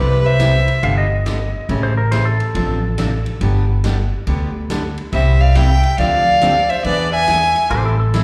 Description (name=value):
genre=country, western swing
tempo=140 BPM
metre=4/4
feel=swing 65% on 8ths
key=unclear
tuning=A4 = 441 Hz
part: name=clear fiddle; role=melody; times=0.0-0.8, 5.1-7.7 s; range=B4 to G#5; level=-18 LUFS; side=equal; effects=slapback echo
part: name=warm clarinet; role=second line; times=0.0-0.8, 5.1-7.7 s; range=G4 to E5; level=-27 LUFS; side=equal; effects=slapback echo
part: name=picked steel-string acoustic guitar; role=accompaniment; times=0.0-8.2 s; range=C3 to A4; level=-26 LUFS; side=equal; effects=slapback echo
part: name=upright bass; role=bass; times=0.0-8.2 s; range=G1 to E2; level=-19 LUFS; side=equal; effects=none
part: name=swinging big-band drum kit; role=drums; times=0.4-8.2 s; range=hi-hat, kick drum, ride cymbal, snare drum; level=-33 LUFS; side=equal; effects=none
part: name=clean lap steel guitar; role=second line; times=0.8-3.5, 7.7-8.2 s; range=E4 to F5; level=-26 LUFS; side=equal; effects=slapback echo
room=light reverb, small room ambience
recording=live gig heard through the venue's PA, recital hall reverb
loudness=-16 LUFS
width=mono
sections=0.0-8.2 A section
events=none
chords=0.0 Cmaj7; 0.8 G7; 1.7 A7; 2.5 Dm7/A; 3.4 G; 5.1 Cmaj7; 6.0 G7sus4/D; 6.8 E7; 7.7 Am7